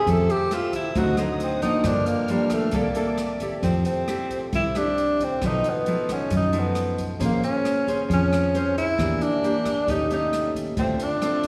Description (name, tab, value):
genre	bossa nova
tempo	135 BPM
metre	4/4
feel	straight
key	F major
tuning	A4 = 441 Hz
part	breathy tenor saxophone	melody	0.0-11.5 s	G3 to A4	-26 LUFS	equal	none
part	nylon-string guitar	accompaniment	0.0-11.5 s	F#2 to C5	-31 LUFS	equal	none
part	vibraphone with soft mallets	accompaniment	0.0-11.5 s	Bb3 to E5	-35 LUFS	equal	none
part	muted symphonic string section	sustained chords	0.0-3.6 s	A4 to F6	-40 LUFS	equal	none
part	fingered electric bass	bass	0.0-11.0 s	G1 to F#2	-29 LUFS	equal	none
part	swinging big-band drum kit	drums	0.1-11.5 s	hi-hat, kick drum, rim click	-36 LUFS	equal	none
room	moderate concert hall reverb, RT60 2.3 s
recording	recorded in a church or concert hall, small room reverb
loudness	-23 LUFS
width	mono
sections	0.0-3.6 A section; 3.6-11.5 B section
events	tenor saxophone solo 0.0-3.6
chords	0.1 Fmaj9; 1.0 D7b9; 1.8 Gm7; 2.7 C13; 3.6 Fmaj9; 5.4 B7#11; 7.2 Bbm9; 9.0 Em7b5; 9.9 Eb7#11; 10.8 Dm7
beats	| 0.07 0.51 0.96 1.40 | 1.85 2.29 2.74 3.19 | 3.63 4.08 4.52 4.97 | 5.42 5.86 6.31 6.75 | 7.20 7.64 8.09 8.54 | 8.98 9.43 9.88 10.32 | 10.77 11.21